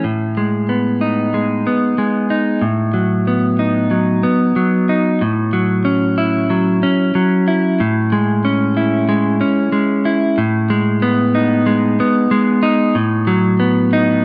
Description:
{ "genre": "rock", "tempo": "93 BPM", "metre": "4/4", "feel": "straight", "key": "A lydian", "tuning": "A4 = 440 Hz", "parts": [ { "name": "clean electric guitar", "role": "solo", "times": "0.0-14.2 s", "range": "A2 to E4", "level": "-16 LUFS", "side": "equal", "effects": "tape echo" } ], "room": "moderate large studio reverb, RT60 1.4 s", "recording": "nothing above 10.5 kHz", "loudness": "-16 LUFS", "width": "mono", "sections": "0.0-5.2 A section; 5.2-14.2 A section", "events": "none", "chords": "0.0 G#m/A; 2.6 B/A; 5.2 A6; 7.8 C#m/A; 10.4 G#m/A; 13.0 B/A" }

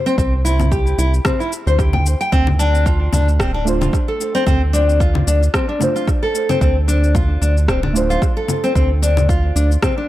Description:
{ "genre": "organic downtempo", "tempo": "112 BPM", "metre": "4/4", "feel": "swing 56% on 16ths", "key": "D minor", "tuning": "A4 = 440 Hz", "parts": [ { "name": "nylon-string guitar", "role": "arpeggios", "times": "0.0-10.1 s", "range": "C4 to G5", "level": "-20 LUFS", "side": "left 1 dB", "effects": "tape echo" }, { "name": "electronic shaker, congas and rim click", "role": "drums", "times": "0.1-9.9 s", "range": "none", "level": "-23 LUFS", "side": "left 2 dB", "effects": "overdrive, analog delay" }, { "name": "round analog bass", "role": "bass", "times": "0.2-9.8 s", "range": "D1 to D2", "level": "-16 LUFS", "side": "equal", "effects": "sidechain pumping" }, { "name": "electronic kick drum", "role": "drums", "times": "0.2-9.9 s", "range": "none", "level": "-19 LUFS", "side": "equal", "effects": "overdrive" }, { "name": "deep mellow chord stab", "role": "accompaniment", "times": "3.6-10.1 s", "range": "A3 to C5", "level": "-24 LUFS", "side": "right 3 dB", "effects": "chorus, sidechain pumping, analog delay" } ], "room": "light reverb", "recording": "echo-heavy mix", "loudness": "-14 LUFS", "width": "side -15 dB against mid", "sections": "0.0-10.1 A section", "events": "none", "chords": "0.0 C; 2.3 Dm7" }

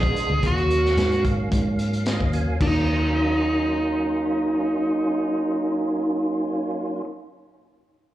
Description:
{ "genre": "straight-eighth soul blues", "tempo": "110 BPM", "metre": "4/4", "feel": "straight", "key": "Eb minor", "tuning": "A4 = 441 Hz", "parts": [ { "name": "dark smooth lead guitar", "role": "melody", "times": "0.0-7.0 s", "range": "Eb4 to Ab4", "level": "-22 LUFS", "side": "right 1 dB", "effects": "overdrive, slapback echo" }, { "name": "tonewheel organ", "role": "accompaniment", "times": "0.0-7.0 s", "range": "Gb3 to Ab5", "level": "-29 LUFS", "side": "right 2 dB", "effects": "slow rotary speaker, overdrive, chorus vibrato, slapback echo" }, { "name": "crunchy breakbeat drum kit", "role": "drums", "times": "0.0-2.7 s", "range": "crash cymbal, hi-hat, kick drum, snare drum", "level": "-27 LUFS", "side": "equal", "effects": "none" }, { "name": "vintage muted fingered electric bass", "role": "bass", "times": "0.3-7.0 s", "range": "D2 to Ab2", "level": "-24 LUFS", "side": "equal", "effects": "none" } ], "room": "light reverb, small room ambience", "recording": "live gig heard through the venue's PA, club reverb", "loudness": "-20 LUFS", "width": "side -14 dB against mid", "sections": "0.0-2.6 A section; 2.6-7.0 B section", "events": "tonewheel organ fill 1.8-2.6", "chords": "0.4 Ebm7" }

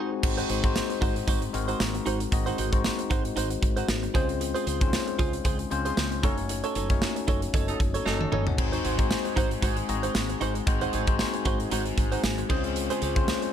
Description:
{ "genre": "1980s-style pop", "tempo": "115 BPM", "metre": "4/4", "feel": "swing 55% on 16ths", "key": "unclear", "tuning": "A4 = 440 Hz", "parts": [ { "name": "bell-like tine electric piano", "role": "accompaniment", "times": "0.0-13.5 s", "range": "Ab3 to Db6", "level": "-30 LUFS", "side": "left 7 dB", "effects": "phaser" }, { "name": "direct-recorded clean electric guitar", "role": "riff", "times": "0.0-13.5 s", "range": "Eb4 to Db5", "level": "-33 LUFS", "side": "right 6 dB", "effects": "lush chorus, ping-pong delay" }, { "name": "woody fretless electric bass", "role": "bass", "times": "0.2-13.3 s", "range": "Gb1 to Db2", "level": "-32 LUFS", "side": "equal", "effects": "wide subtle chorus" }, { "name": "modern studio drum kit", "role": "drums", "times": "0.2-13.5 s", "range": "crash cymbal, hi-hat, kick drum, snare drum, tambourine, toms", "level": "-27 LUFS", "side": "right 1 dB", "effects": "none" }, { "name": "warm horn section", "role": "stabs", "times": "7.7-8.4 s", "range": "Gb3 to A4", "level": "-33 LUFS", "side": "right 2 dB", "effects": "none" }, { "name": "overdriven semi-hollow guitar", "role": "accompaniment", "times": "8.6-13.5 s", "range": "Db3 to Ab4", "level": "-35 LUFS", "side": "left 1 dB", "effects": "wide subtle chorus" } ], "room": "little or no reverb", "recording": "none", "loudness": "-24 LUFS", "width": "side -9 dB against mid", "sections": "0.2-13.5 A section", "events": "break 0.0; tine electric piano fill 0.0; band accent 6.5-8.6; drum fill 8.1-8.6", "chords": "0.2 Ab7; 4.1 Dbmaj7; 6.2 Gbm6; 8.6 Ab7; 12.5 Dbmaj7" }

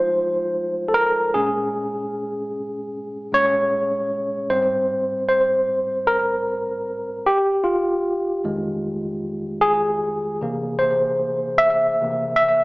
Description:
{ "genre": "R&B", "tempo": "76 BPM", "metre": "4/4", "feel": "swing 59% on 16ths", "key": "F minor", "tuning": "A4 = 440 Hz", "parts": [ { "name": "tine electric piano", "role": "solo", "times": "0.0-12.6 s", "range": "F2 to E5", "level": "-19 LUFS", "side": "equal", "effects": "overdrive, fast stereo tremolo, slapback echo" } ], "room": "light reverb, digital ambience", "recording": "small speaker sound", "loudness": "-19 LUFS", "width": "side -25 dB against mid", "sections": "0.0-4.5 A section; 4.5-12.6 B section", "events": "tine electric piano solo 0.0-4.5, 4.5-12.6", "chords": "0.0 Fm7; 1.3 Bbm7; 4.5 Abmaj9; 7.3 Fm7; 10.4 C7" }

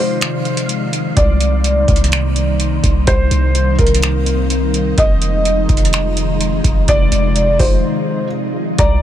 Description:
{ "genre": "hip hop, atmospheric cloud-rap", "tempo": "126 BPM", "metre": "4/4", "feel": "half-time", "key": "unclear", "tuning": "A4 = 441 Hz", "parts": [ { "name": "felt-muted upright piano", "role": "melody", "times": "0.0-9.0 s", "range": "Bb4 to Eb5", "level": "-19 LUFS", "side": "equal", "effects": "tape echo" }, { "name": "ethereal airy pad", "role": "sustained chords", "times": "0.0-9.0 s", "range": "C3 to Eb4", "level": "-20 LUFS", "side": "left 2 dB", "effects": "ensemble chorus, built-in reverb, sidechain pumping" }, { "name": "wind-like tuned noise texture", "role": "texture", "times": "0.0-9.0 s", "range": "Ab3 to F5", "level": "-27 LUFS", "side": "equal", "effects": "built-in reverb" }, { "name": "booming analog drum machine", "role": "drums", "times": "0.2-9.0 s", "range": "finger snaps, hi-hat, kick drum", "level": "-16 LUFS", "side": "equal", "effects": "vintage 12-bit sampler grit" }, { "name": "warm 808-style bass", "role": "bass", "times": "1.2-9.0 s", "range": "F1 to C2", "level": "-16 LUFS", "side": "equal", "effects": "none" }, { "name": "Celtic harp", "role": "arpeggios", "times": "8.8-9.0 s", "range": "Bb5", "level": "-23 LUFS", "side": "left 6 dB", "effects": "none" } ], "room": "little or no reverb", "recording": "none", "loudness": "-12 LUFS", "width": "side -11 dB against mid", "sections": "0.0-8.8 A section", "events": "break 0.0-1.2, 7.8-8.8", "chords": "0.0 Fm7; 1.2 Cm7; 5.0 Fm7" }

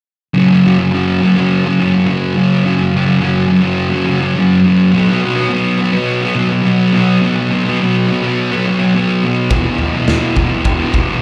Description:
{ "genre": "garage rock duo or trio", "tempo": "105 BPM", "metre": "4/4", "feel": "straight", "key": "unclear", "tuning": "A4 = 438 Hz", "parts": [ { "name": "fuzz guitar", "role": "riff", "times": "0.3-11.2 s", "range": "E2 to B3", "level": "-14 LUFS", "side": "equal", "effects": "distortion" }, { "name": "raw garage drum kit", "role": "drums", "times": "9.5-11.1 s", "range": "kick drum, snare drum, toms", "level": "-18 LUFS", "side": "equal", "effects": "none" } ], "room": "small room ambience", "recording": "live gig heard through the venue's PA, club reverb", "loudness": "-14 LUFS", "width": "mono", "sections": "0.4-11.2 A section", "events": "none", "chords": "0.4 F#5; 4.9 B5; 9.5 E5" }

